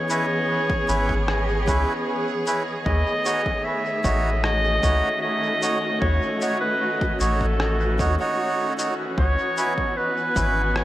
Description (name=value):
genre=ambient dub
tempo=76 BPM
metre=4/4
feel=straight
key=unclear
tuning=A4 = 440 Hz
part: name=clear clarinet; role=melody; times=0.0-10.8 s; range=A4 to E5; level=-25 LUFS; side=equal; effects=vintage 12-bit sampler grit, dub echo
part: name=dark chamber string section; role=sustained chords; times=0.0-10.8 s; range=D#3 to G#5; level=-27 LUFS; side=equal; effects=none
part: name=melodica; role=stabs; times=0.1-10.6 s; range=C#4 to C#5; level=-27 LUFS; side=right 2 dB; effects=dub echo
part: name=electronic cabasa and rim click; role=drums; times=0.1-10.8 s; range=none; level=-32 LUFS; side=left 1 dB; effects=studio reverb, dub echo
part: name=electronic kick drum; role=drums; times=0.7-10.5 s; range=none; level=-27 LUFS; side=left 1 dB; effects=studio reverb
part: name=soft dub sub bass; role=bass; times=0.9-10.8 s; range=G#1 to D#2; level=-23 LUFS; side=equal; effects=none
room=moderate spring reverb, RT60 2.5 s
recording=none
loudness=-20 LUFS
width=side -14 dB against mid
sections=0.0-10.8 A section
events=none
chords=0.0 C#m7; 2.9 D#m7b5; 9.2 C#m7